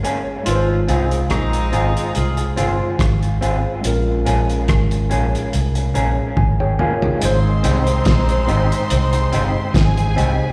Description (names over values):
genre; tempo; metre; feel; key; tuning
lovers rock reggae; 71 BPM; 4/4; swing 55% on 16ths; Ab major; A4 = 440 Hz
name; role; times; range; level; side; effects
tine electric piano; accompaniment; 0.0-10.5 s; Ab3 to Bb5; -27 LUFS; equal; slapback echo
electric guitar through a small old amp; stabs; 0.0-10.3 s; Bb3 to Ab4; -26 LUFS; equal; tape echo, slapback echo
cloth-damped thuddy drum kit; drums; 0.0-10.4 s; hi-hat, kick drum, rim click, snare drum, toms; -24 LUFS; equal; none
warm horn section; second line; 0.5-10.1 s; Eb3 to Ab4; -28 LUFS; equal; slapback echo
vintage muted fingered electric bass; bass; 0.5-10.4 s; G1 to C2; -20 LUFS; equal; none
warm studio string section; second line; 7.2-10.5 s; Ab4 to C6; -28 LUFS; equal; slapback echo
room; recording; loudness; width
light reverb, small room reverb; live gig heard through the venue's PA, recital hall reverb; -18 LUFS; mono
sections
0.0-7.2 A section; 7.2-10.5 B section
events
tine electric piano fill 5.5-7.2; drum fill 6.4-7.2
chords
0.5 Ab6; 3.8 Bbm7; 7.2 Abmaj7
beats
| 0.46 1.30 2.15 2.99 | 3.84 4.68 5.53 6.37 | 7.22 8.06 8.90 9.75